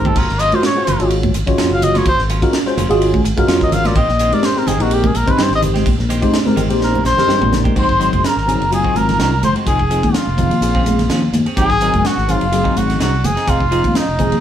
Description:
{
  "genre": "electric jazz fusion",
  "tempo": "126 BPM",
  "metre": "4/4",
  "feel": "swing 54% on 16ths",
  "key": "Ab mixolydian",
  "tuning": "A4 = 440 Hz",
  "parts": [
    { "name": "trumpet with cup mute", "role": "melody", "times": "0.0-14.4 s", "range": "Eb4 to F5", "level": "-19 LUFS", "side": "left 1 dB", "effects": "none" },
    { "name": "tine electric piano", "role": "accompaniment", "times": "0.0-14.4 s", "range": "F3 to Db5", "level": "-19 LUFS", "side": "left 1 dB", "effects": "phaser" },
    { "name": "fingered electric bass", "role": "bass", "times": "0.0-14.4 s", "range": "F1 to G2", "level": "-19 LUFS", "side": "equal", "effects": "none" },
    { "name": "clean electric guitar", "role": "stabs", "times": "0.1-14.3 s", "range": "Eb3 to Ab4", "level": "-28 LUFS", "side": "right 4 dB", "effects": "none" },
    { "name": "crisp fusion drum kit", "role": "drums", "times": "0.1-14.4 s", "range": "crash cymbal, hi-hat, kick drum, ride cymbal, snare drum, toms", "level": "-20 LUFS", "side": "right 1 dB", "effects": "none" },
    { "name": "congas", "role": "percussion", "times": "0.1-14.3 s", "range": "none", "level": "-22 LUFS", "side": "right 1 dB", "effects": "none" },
    { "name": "mellow hollow concert flute", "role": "second line", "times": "7.8-14.4 s", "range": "Eb5 to C6", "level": "-23 LUFS", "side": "right 1 dB", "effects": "none" }
  ],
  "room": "wet studio reverb, RT60 0.8 s",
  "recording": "band playing live in one room",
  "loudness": "-13 LUFS",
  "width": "side -10 dB against mid",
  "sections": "0.0-7.8 A section; 7.8-14.4 B section",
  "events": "drum fill 0.0, 6.8-7.8; muted trumpet solo 0.0-7.8",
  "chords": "0.2 Ab13sus4; 4.0 Bb13sus4; 7.8 Ab7; 9.7 Fm7; 10.6 Bbm9; 11.6 Ab7; 13.5 Fm7",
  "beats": "| 0.16 0.64 1.11 1.59 | 2.06 2.54 3.01 3.49 | 3.96 4.44 4.91 5.39 | 5.86 6.33 6.81 7.29 | 7.76 8.24 8.71 9.19 | 9.66 10.14 10.62 11.09 | 11.57 12.04 12.52 13.00 | 13.47 13.95"
}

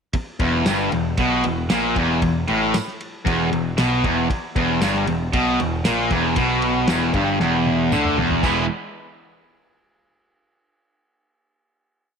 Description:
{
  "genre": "classic rock",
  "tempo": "116 BPM",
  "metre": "4/4",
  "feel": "straight",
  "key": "unclear",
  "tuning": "A4 = 440 Hz",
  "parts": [
    { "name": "cranked stack guitar", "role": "riff", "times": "0.1-8.7 s", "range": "E2 to E4", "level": "-22 LUFS", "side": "right 10 dB", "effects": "overdrive, spring reverb" },
    { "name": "overdriven electric guitar", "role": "riff", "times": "0.1-8.6 s", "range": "E2 to E4", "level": "-22 LUFS", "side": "left 12 dB", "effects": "spring reverb" },
    { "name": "growling picked electric bass", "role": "bass", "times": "0.1-8.7 s", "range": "E1 to D2", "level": "-27 LUFS", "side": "equal", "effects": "overdrive" },
    { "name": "cloth-damped thuddy drum kit", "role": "drums", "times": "0.1-8.6 s", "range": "crash cymbal, kick drum, ride cymbal, snare drum, toms", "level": "-26 LUFS", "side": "equal", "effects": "none" },
    { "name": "tambourine", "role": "percussion", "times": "0.7-8.7 s", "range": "none", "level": "-38 LUFS", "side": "right 14 dB", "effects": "none" }
  ],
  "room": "light reverb, small room reverb",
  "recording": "1960s-style stereo with parts hard left and right",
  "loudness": "-18 LUFS",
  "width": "side -6 dB against mid",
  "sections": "0.1-8.4 riff; 8.4-10.5 final chord",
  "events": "drum fill 7.4-8.4",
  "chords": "0.1 E5; 8.4 E",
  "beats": "| 0.14 0.66 1.18 1.70 | 2.22 2.74 3.26 3.78 | 4.30 4.82 5.34 5.85 | 6.37 6.89 7.41 7.92 | 8.44"
}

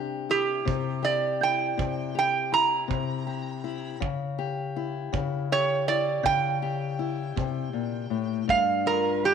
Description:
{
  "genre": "acoustic country blues, solo or duo",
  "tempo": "54 BPM (dotted quarters)",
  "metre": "12/8",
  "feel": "straight",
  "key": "unclear",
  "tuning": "A4 = 444 Hz",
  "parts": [
    { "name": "fingerpicked steel-string acoustic guitar", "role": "accompaniment", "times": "0.0-9.3 s", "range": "G2 to G4", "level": "-29 LUFS", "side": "left 8 dB", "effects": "none" },
    { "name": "metal-body resonator slide guitar", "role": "melody", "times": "0.3-9.3 s", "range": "G4 to Bb5", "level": "-24 LUFS", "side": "right 6 dB", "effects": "none" },
    { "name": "kick drum", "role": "drums", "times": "0.7-8.7 s", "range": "none", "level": "-31 LUFS", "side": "right 4 dB", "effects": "none" }
  ],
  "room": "moderate echo chamber reverb, RT60 2.5 s",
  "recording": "1960s-style stereo with parts hard left and right",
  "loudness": "-24 LUFS",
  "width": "side -7 dB against mid",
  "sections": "0.0-9.3 A section",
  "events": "none",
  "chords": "0.0 C7; 4.0 C#dim; 8.5 G7(no3)",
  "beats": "0.67 1.79 2.90 | 4.02 5.14 6.25 7.37 | 8.49"
}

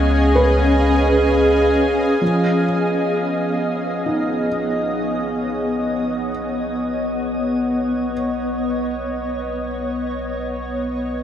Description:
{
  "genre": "ambient",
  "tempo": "free time",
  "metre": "none",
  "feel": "none",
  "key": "B lydian",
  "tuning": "A4 = 440 Hz",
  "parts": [
    { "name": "shimmering ambient pad", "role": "sustained chords", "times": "0.0-11.2 s", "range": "B3 to E#5", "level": "-19 LUFS", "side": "equal", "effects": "chorus, built-in reverb, shimmer reverb" },
    { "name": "felt-muted upright piano", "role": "arpeggios", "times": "0.0-11.2 s", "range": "E#3 to E#5", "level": "-24 LUFS", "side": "right 1 dB", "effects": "diffuse ambient delay, shimmer reverb" },
    { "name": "round analog bass", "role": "bass", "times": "0.0-11.2 s", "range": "B1 to C#2", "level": "-25 LUFS", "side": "equal", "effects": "none" },
    { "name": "drifting glass-harmonics texture", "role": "texture", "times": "0.0-2.2 s", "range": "G#5", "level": "-30 LUFS", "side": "right 2 dB", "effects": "chorus, built-in reverb, shimmer reverb" },
    { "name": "bowed-like drone", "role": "drone", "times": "3.3-11.2 s", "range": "B3", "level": "-30 LUFS", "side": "right 1 dB", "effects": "built-in reverb" }
  ],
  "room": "wet huge ambient reverb, RT60 8.4 s",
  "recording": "none",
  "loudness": "-17 LUFS",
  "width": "side -9 dB against mid",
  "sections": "0.0-2.2 A section; 2.2-11.2 B section",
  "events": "fade-in on analog synth bass 2.2-11.2",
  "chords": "0.0 C#add9; 2.2 B",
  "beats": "free time"
}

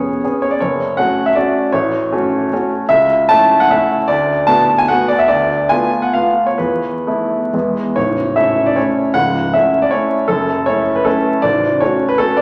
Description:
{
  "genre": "classical, romantic triple-time dance for piano with dotted rhythms",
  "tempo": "122-167 BPM",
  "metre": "3/4",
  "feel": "rubato",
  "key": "A major",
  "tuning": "A4 = 436 Hz",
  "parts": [
    { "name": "clear baby grand piano", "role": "solo", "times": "0.0-12.4 s", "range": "A0 to A5", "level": "-15 LUFS", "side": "equal", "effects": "none" }
  ],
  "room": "wet recital hall reverb, RT60 1.6 s",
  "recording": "vinyl crackle",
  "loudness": "-15 LUFS",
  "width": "mono",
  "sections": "0.0-8.0 A section; 8.0-12.4 B section",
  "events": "none",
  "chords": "0.0 C#7/E#; 0.6 F#m; 1.7 F#m/A; 2.9 A/C#; 4.1 Bm7/D; 5.3 Bm7b5/D; 6.6 Esus4; 7.5 E; 8.0 A; 9.2 A/C#; 10.3 F#m7; 11.4 F#m/A",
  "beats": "0.23 | 0.61 0.98 1.35 | 1.73 2.11 2.52 | 2.89 3.29 3.70 | 4.08 4.47 4.89 | 5.28 5.70 6.14 | 6.59 7.07 7.54 | 7.96 8.36 8.77 | 9.15 9.54 9.92 | 10.29 10.67 11.06 | 11.44 11.81 12.19"
}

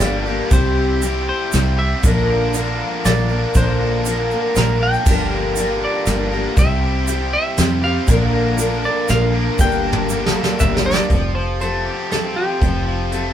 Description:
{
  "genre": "folk rock and heartland rock",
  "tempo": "119 BPM",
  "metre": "3/4",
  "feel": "straight",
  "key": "unclear",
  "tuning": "A4 = 440 Hz",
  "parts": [
    { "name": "semi-hollow electric guitar", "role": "melody", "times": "0.0-13.3 s", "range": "G4 to G5", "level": "-24 LUFS", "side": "equal", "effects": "none" },
    { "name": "picked twelve-string acoustic guitar", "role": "accompaniment", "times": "0.0-13.3 s", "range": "G2 to Bb4", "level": "-22 LUFS", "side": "left 2 dB", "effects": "none" },
    { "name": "bright tonewheel organ", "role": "sustained chords", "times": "0.0-13.3 s", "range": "G3 to C5", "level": "-33 LUFS", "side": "right 2 dB", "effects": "none" },
    { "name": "biting overdriven guitar", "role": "riff", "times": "0.0-13.3 s", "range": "G2 to Bb4", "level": "-24 LUFS", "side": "equal", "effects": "none" },
    { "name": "fingered electric bass", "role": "bass", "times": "0.0-13.3 s", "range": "F1 to F2", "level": "-20 LUFS", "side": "equal", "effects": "none" },
    { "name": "soft brush drum kit", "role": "drums", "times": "0.0-13.2 s", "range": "crash cymbal, hi-hat, kick drum, snare drum, toms", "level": "-19 LUFS", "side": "equal", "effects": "none" },
    { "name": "egg shaker", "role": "percussion", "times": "0.0-10.7 s", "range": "none", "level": "-30 LUFS", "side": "right 6 dB", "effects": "none" }
  ],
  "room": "moderate small room reverb, RT60 0.5 s",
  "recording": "band playing live in one room",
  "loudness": "-15 LUFS",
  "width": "side -10 dB against mid",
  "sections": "0.0-11.1 A section; 11.1-13.3 B section",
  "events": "drum fill 9.6-11.1",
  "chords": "0.0 Gm7; 0.5 C; 2.0 Bb; 5.1 Gm7; 6.6 C; 8.1 Bb; 9.6 Gmadd9; 11.1 Fadd9",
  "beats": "0.01 | 0.52 1.02 1.53 | 2.04 2.54 3.05 | 3.56 4.06 4.57 | 5.07 5.57 6.08 | 6.58 7.08 7.59 | 8.09 8.59 9.09 | 9.60 10.10 10.60 | 11.10 11.61 12.11 | 12.62 13.12"
}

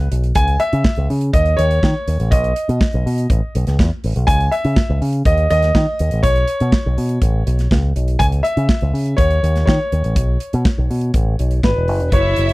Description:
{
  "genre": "disco",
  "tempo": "122 BPM",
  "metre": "4/4",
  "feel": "straight",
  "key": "C# minor",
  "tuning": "A4 = 441 Hz",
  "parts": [
    { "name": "warm grand piano", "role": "melody", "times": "0.0-12.5 s", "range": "B4 to G#5", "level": "-20 LUFS", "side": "equal", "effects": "none" },
    { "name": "picked electric bass with an envelope filter", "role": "bass", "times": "0.0-12.5 s", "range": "E1 to D#3", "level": "-16 LUFS", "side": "equal", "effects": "none" },
    { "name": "modern studio drum kit", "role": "drums", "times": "0.0-12.5 s", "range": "hi-hat, kick drum, snare drum", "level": "-18 LUFS", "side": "equal", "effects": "none" },
    { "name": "rich studio violin section", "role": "second line", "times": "12.1-12.5 s", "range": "E4 to E5", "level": "-20 LUFS", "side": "equal", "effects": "none" }
  ],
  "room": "little or no reverb",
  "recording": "dry, close 1970s-style studio recording",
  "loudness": "-14 LUFS",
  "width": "side -20 dB against mid",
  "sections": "0.0-12.1 A section",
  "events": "none",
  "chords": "0.4 C#m; 1.3 C#sus2; 2.3 B; 3.3 Asus2; 4.3 C#m; 5.3 N.C.; 6.2 Bsus2; 7.2 Asus2; 8.2 C#m; 9.2 N.C.; 10.2 Bsus2; 11.1 Asus2; 11.6 G#m7",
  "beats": "| 0.35 0.84 1.33 1.82 | 2.31 2.80 3.29 3.78 | 4.27 4.76 5.25 5.74 | 6.23 6.72 7.21 7.71 | 8.20 8.69 9.18 9.67 | 10.16 10.65 11.14 11.63 | 12.12"
}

